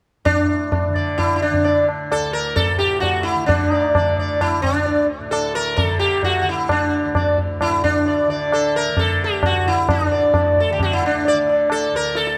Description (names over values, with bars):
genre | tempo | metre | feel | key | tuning
indian classical, Hindustani | 131 BPM | 7/4 | straight | unclear | A4 = 440 Hz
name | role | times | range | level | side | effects
tanpura | drone | 0.2-12.4 s | D2 to D3 | -31 LUFS | equal | none
sitar | melody | 0.3-12.4 s | D4 to D5 | -20 LUFS | equal | tape echo
tabla | percussion | 0.3-12.4 s | none | -24 LUFS | equal | none
room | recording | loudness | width
moderate recital hall reverb, RT60 1.3 s | close, detailed microphones | -19 LUFS | mono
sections
0.3-12.4 A section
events
none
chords
none